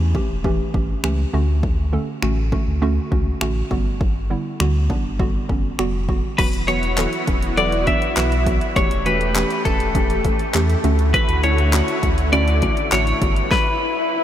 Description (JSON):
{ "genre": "dance-pop", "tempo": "101 BPM", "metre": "4/4", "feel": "straight", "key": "E dorian", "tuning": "A4 = 440 Hz", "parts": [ { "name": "saturated sub bass", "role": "bass", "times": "0.0-13.4 s", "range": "E1 to E2", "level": "-21 LUFS", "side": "equal", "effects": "sidechain pumping" }, { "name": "hollow square pluck", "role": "accompaniment", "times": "0.1-13.5 s", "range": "D3 to A4", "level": "-25 LUFS", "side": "right 2 dB", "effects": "chorus, sidechain pumping" }, { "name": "deep house drum kit", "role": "drums", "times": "0.1-13.7 s", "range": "crash cymbal, finger snaps, handclaps, hi-hat, kick drum, snare drum", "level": "-23 LUFS", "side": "equal", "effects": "none" }, { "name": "twelve-string electric guitar", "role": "melody", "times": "6.4-14.2 s", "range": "A4 to E5", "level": "-21 LUFS", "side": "left 2 dB", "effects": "lush chorus, ping-pong delay" }, { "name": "supersaw pad", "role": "sustained chords", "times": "6.4-13.5 s", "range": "D3 to B4", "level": "-26 LUFS", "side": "equal", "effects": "analog chorus, sidechain pumping" }, { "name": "swell", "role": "sound effects", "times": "12.9-14.2 s", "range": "none", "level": "-26 LUFS", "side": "left 5 dB", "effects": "none" } ], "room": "light reverb", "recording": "none", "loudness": "-17 LUFS", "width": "side -11 dB against mid", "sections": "0.0-6.4 A section; 6.4-14.2 B section", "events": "swell 12.9-14.2", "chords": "0.0 A7/E; 1.3 Dmaj7; 3.7 Gmaj7; 6.4 Esus2; 8.8 A7/E; 10.8 Dmaj7; 13.2 Gmaj7" }